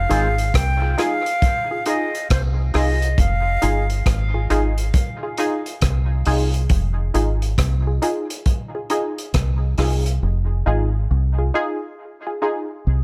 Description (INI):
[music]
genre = dub reggae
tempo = 68 BPM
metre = 4/4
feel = swing 64% on 16ths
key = F minor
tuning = A4 = 440 Hz
[part]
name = breathy silver concert flute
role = melody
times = 0.0-4.1 s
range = C5 to G5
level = -27 LUFS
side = equal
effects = dub echo
[part]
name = deep dub fingered electric bass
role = bass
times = 0.0-13.0 s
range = F1 to C2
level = -22 LUFS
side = equal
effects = none
[part]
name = filtered dub chord stab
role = stabs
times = 0.1-12.7 s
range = Eb4 to Ab4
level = -27 LUFS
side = equal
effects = chorus, dub echo
[part]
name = crunchy breakbeat drum kit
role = drums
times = 0.1-10.2 s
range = hi-hat, kick drum, rim click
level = -24 LUFS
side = equal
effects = none
[sound]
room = small room ambience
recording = none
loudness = -20 LUFS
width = mono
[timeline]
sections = 0.0-13.0 A section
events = part muted 10.2-13.0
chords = 0.0 Fm7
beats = 0.54 1.42 2.30 | 3.18 4.06 4.94 5.82 | 6.70 7.58 8.46 9.34 | 10.22 11.10 11.98 12.86